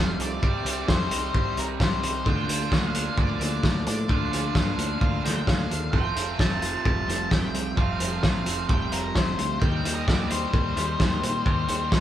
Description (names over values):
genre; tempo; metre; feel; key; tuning
indie rock; 131 BPM; 4/4; straight; F mixolydian; A4 = 440 Hz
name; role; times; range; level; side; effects
octave-fuzz lead guitar; melody; 0.0-12.0 s; Bb4 to A5; -31 LUFS; left 3 dB; distortion
biting overdriven guitar; riff; 0.0-12.0 s; F2 to G4; -31 LUFS; right 6 dB; none
twelve-string electric guitar; riff; 0.0-12.0 s; C3 to F4; -34 LUFS; left 5 dB; none
growling picked electric bass; bass; 0.0-12.0 s; F1 to Bb2; -31 LUFS; equal; overdrive
loose indie drum kit; drums; 0.2-12.0 s; hi-hat, kick drum, snare drum; -25 LUFS; equal; none
room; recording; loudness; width
moderate large studio reverb, RT60 0.9 s; band playing live in one room; -22 LUFS; side -11 dB against mid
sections
0.0-12.0 A section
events
none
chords
0.4 Cm; 2.3 Bb/D; 5.9 Fadd9; 9.6 Cm/Eb